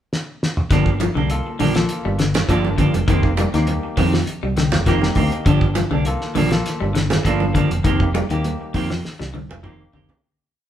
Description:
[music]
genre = afrobeat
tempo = 101 BPM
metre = 4/4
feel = straight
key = G minor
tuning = A4 = 438 Hz
[part]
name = cloth-damped thuddy drum kit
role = drums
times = 0.1-10.2 s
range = hi-hat, kick drum, snare drum, toms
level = -22 LUFS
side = equal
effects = none
[part]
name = semi-hollow electric guitar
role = arpeggios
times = 0.7-10.1 s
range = D3 to G3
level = -23 LUFS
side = left 5 dB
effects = none
[part]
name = semi-hollow electric guitar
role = stabs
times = 0.7-10.1 s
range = Eb3 to G4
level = -24 LUFS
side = right 4 dB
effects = none
[part]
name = fingered electric bass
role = bass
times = 0.7-10.1 s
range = F1 to F2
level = -23 LUFS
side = right 1 dB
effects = none
[part]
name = congas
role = percussion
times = 1.0-10.2 s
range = none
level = -25 LUFS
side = right 3 dB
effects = none
[part]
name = barky tine electric piano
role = accompaniment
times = 1.3-10.2 s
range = Bb3 to G5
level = -28 LUFS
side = left 3 dB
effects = overdrive
[sound]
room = moderate large studio reverb, RT60 1.0 s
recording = band playing live in one room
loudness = -16 LUFS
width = side -10 dB against mid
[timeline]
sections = 0.0-0.7 pickup bar; 0.7-10.2 groove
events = drum fill 0.1-0.7, 9.0-10.2; tine electric piano fill 4.3-5.5; fade-out 7.9-10.2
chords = 0.0 N.C.; 0.7 Gm7; 3.1 F9sus4; 5.5 Gm7; 7.9 F9sus4

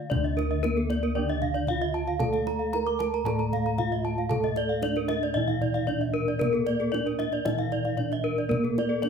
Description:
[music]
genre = Balinese gamelan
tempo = 114 BPM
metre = 4/4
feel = straight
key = D pelog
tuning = A4 = 441 Hz
[part]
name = gamelan-type bronze metallophone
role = melody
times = 0.0-9.1 s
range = Bb3 to Bb4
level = -30 LUFS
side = right 4 dB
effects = none
[part]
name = gamelan-type bronze metallophone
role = accompaniment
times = 0.0-9.1 s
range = D3 to Bb3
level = -37 LUFS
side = right 6 dB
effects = none
[part]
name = gamelan-type bronze metallophone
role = arpeggios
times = 0.0-9.1 s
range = A4 to Bb5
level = -31 LUFS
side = left 6 dB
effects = none
[part]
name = gamelan-type bossed gongs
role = bass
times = 0.0-9.1 s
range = D2 to Bb4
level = -31 LUFS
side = left 2 dB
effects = none
[part]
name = kendang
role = percussion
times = 0.1-9.1 s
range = none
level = -35 LUFS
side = left 1 dB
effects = none
[part]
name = gamelan-type bronze metallophone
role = arpeggios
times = 0.4-8.9 s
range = A4 to D6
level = -33 LUFS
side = right 4 dB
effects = none
[sound]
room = moderate large studio reverb, RT60 0.8 s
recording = band playing live in one room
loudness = -24 LUFS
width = side -6 dB against mid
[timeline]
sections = 0.1-9.1 A section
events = none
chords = none

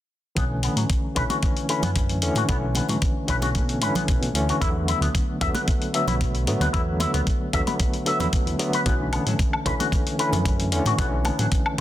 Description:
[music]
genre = nu-disco, nu disco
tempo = 113 BPM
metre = 4/4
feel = straight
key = B minor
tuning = A4 = 440 Hz
[part]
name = barky tine electric piano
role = accompaniment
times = 0.4-11.8 s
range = D3 to C#4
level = -26 LUFS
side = equal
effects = overdrive, fast tremolo, sidechain pumping, low-pass filter, ping-pong delay
[part]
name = electric guitar with an envelope filter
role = riff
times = 0.4-11.8 s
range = F#3 to E5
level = -29 LUFS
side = left 3 dB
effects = wide subtle chorus, low-pass filter, ping-pong delay
[part]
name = fat analog bass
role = bass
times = 0.4-11.8 s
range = B1 to B2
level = -26 LUFS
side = equal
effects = none
[part]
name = electronic hi-hat and woodblock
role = drums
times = 0.4-11.8 s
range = none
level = -30 LUFS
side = left 3 dB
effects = none
[part]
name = electronic kick drum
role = drums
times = 0.4-11.8 s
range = none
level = -24 LUFS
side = equal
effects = none
[part]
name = congas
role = percussion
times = 1.3-11.5 s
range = none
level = -32 LUFS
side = right 2 dB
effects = none
[sound]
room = light reverb, digital ambience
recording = dense, heavily limited modern master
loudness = -21 LUFS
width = side -13 dB against mid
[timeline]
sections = 0.4-11.8 A section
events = filter sweep on analog synth bass 0.4-11.8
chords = 0.4 Bm11; 4.6 E7sus4; 8.9 Bm11

